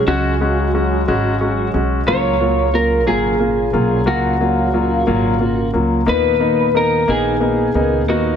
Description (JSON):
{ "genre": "pop", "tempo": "60 BPM (dotted quarters)", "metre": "6/8", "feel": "straight", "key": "unclear", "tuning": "A4 = 440 Hz", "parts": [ { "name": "electric slide guitar", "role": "melody", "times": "0.0-8.4 s", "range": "Gb4 to Db5", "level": "-19 LUFS", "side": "equal", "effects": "ping-pong delay" }, { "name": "sweeping resonant pad", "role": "sustained chords", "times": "0.0-8.4 s", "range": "Bb2 to F5", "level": "-24 LUFS", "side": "right 3 dB", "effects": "chorus" }, { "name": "upright bass", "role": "bass", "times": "0.0-8.4 s", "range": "Ab1 to D#2", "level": "-21 LUFS", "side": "right 1 dB", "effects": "none" }, { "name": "clear concert grand piano", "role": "accompaniment", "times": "0.1-8.3 s", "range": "Gb3 to Gb4", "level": "-18 LUFS", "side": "left 3 dB", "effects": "none" } ], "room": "light reverb, small room ambience", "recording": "none", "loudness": "-14 LUFS", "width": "side -8 dB against mid", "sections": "0.0-8.4 A section", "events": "none", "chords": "0.0 Dbsus4; 2.1 Gbmaj7; 6.1 Bmaj7" }